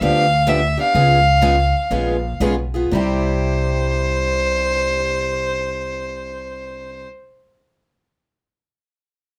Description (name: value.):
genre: acoustic string swing (jazz manouche).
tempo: 114-132 BPM.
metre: 4/4.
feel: swing 65% on 8ths.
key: C major.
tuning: A4 = 440 Hz.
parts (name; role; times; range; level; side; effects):
dark violin; melody; 0.0-7.1 s; C5 to F5; -22 LUFS; equal; none.
picked steel-string acoustic guitar; accompaniment; 0.0-7.1 s; C3 to Ab4; -26 LUFS; equal; none.
picked steel-string acoustic guitar; accompaniment; 0.0-7.1 s; C3 to Ab4; -31 LUFS; equal; none.
upright bass; bass; 0.0-7.0 s; Bb1 to D2; -24 LUFS; equal; none.
room: light reverb.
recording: none.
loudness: -18 LUFS.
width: mono.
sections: 0.0-2.9 A section; 2.9-7.1 B section.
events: slowing down 0.0-2.9.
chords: 0.0 G7; 0.9 Db7; 2.9 C.